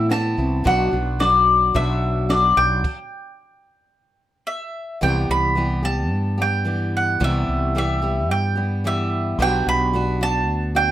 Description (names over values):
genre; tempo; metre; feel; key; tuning
acoustic folk duo or small band; 110 BPM; 4/4; straight; unclear; A4 = 444 Hz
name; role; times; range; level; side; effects
mandolin; melody; 0.0-10.9 s; D5 to B5; -21 LUFS; equal; plate reverb
picked steel-string acoustic guitar; accompaniment; 0.0-10.9 s; A2 to G4; -25 LUFS; left 1 dB; plate reverb
mellow fretless electric bass; bass; 0.0-10.9 s; B1 to A2; -22 LUFS; equal; none
compact cocktail drum kit; drums; 0.1-3.0 s; crash cymbal, kick drum, snare drum; -25 LUFS; equal; none
room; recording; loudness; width
light reverb; rough home demo mix; -18 LUFS; side -12 dB against mid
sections
0.0-5.0 A section; 5.0-10.9 B section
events
stop 2.8-5.0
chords
0.0 Amadd9; 0.7 Bm; 2.8 N.C.; 5.0 Cmaj7; 9.4 Gmaj7/B